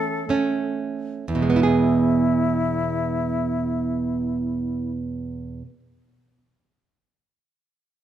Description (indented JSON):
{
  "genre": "romantic duo for flute and classical guitar",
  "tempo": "62 BPM",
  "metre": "3/4",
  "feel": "rubato",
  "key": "E major",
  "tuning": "A4 = 438 Hz",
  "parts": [
    { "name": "concert flute", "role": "melody", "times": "0.0-4.9 s", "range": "E4 to A4", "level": "-28 LUFS", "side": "left 7 dB", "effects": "none" },
    { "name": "nylon-string guitar", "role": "accompaniment", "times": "0.0-5.8 s", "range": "E2 to G#4", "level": "-21 LUFS", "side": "right 3 dB", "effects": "none" }
  ],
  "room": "moderate recital hall reverb, RT60 1.5 s",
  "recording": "minimal, uncompressed stereo recording",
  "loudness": "-20 LUFS",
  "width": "side -11 dB against mid",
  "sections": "0.0-1.3 A section; 1.3-4.2 B section",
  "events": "slowing down 0.0-1.3",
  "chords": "0.0 A; 1.3 E"
}